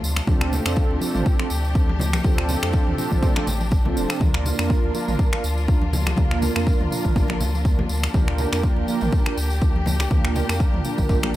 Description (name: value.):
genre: afro house.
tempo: 122 BPM.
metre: 4/4.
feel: swing 55% on 16ths.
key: unclear.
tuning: A4 = 440 Hz.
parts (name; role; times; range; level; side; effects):
rich studio string section; sustained chords; 0.0-11.4 s; C3 to G4; -31 LUFS; left 2 dB; sidechain pumping.
warm sub bass; bass; 0.0-11.4 s; D1 to F2; -24 LUFS; equal; sidechain pumping.
tambourine; percussion; 0.0-11.2 s; none; -36 LUFS; right 2 dB; none.
house drum kit; drums; 0.2-11.3 s; finger snaps, toms; -28 LUFS; equal; overdrive, studio reverb.
congas; percussion; 0.2-11.3 s; none; -30 LUFS; left 2 dB; none.
mellow synth brass; stabs; 0.3-11.3 s; Bb3 to Bb4; -27 LUFS; right 3 dB; chorus, sidechain pumping, dub echo.
electronic kick drum; drums; 0.3-11.2 s; none; -20 LUFS; equal; overdrive, studio reverb.
room: small room reverb.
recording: none.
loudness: -19 LUFS.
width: side -15 dB against mid.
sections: 0.0-11.4 A section.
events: none.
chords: 0.0 Dm7; 4.2 Bb.